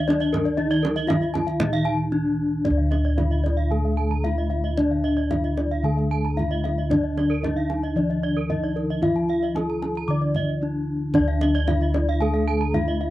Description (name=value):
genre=Balinese gamelan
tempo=113 BPM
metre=4/4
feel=straight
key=D pelog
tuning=A4 = 440 Hz
part: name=gamelan-type bronze metallophone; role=melody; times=0.0-13.1 s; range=D4 to D5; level=-28 LUFS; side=left 1 dB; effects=none
part: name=gamelan-type bronze metallophone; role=accompaniment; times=0.0-13.1 s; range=D3 to D4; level=-31 LUFS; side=right 1 dB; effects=none
part: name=gamelan-type bronze metallophone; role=arpeggios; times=0.0-13.0 s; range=Bb4-40c to Bb5-40c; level=-32 LUFS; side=right 7 dB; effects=none
part: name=gamelan-type bossed gongs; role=bass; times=0.0-13.1 s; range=D2 to E4+50c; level=-23 LUFS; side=equal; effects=none
part: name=gamelan-type bronze metallophone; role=arpeggios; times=0.1-13.1 s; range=Bb4-40c to D6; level=-30 LUFS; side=left 5 dB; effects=none
part: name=kendang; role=percussion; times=0.1-13.1 s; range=none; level=-29 LUFS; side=right 2 dB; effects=none
room=light reverb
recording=dry, close 1970s-style studio recording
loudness=-20 LUFS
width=side -15 dB against mid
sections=0.0-2.7 A section; 2.7-13.1 B section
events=none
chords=none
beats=0.10 | 0.59 1.10 1.61 2.13 | 2.66 3.19 3.72 4.25 | 4.78 5.31 5.84 6.37 | 6.90 7.43 7.97 8.50 | 9.03 9.56 10.09 10.62 | 11.15 11.68 12.21 12.74